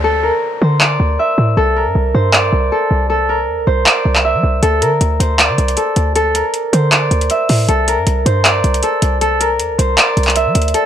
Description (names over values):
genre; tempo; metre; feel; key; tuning
hip hop, trap; 157 BPM; 4/4; half-time; unclear; A4 = 437 Hz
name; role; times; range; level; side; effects
Celtic harp; melody; 0.0-10.9 s; A4 to E5; -15 LUFS; equal; low-pass filter, tape echo
short 808-style bass; bass; 0.0-10.7 s; C2 to G3; -16 LUFS; equal; none
downlifter; sound effects; 0.0-1.6 s; none; -33 LUFS; left 2 dB; none
booming analog drum machine; drums; 0.8-10.8 s; handclaps, hi-hat; -14 LUFS; equal; none
hollow clarinet-like synth lead; second line; 10.7-10.9 s; D5; -24 LUFS; left 5 dB; chorus
room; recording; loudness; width
digital ambience; dry, gritty hardware recording; -12 LUFS; side -10 dB against mid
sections
0.0-10.9 A section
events
break 0.0-4.6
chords
0.0 Dsus2; 1.6 C; 4.6 Dsus2; 7.7 C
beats
| 0.04 0.42 0.81 1.19 | 1.57 1.95 2.33 2.72 | 3.10 3.48 3.86 4.25 | 4.63 5.01 5.39 5.78 | 6.16 6.54 6.92 7.30 | 7.69 8.07 8.45 8.83 | 9.21 9.60 9.98 10.36 | 10.74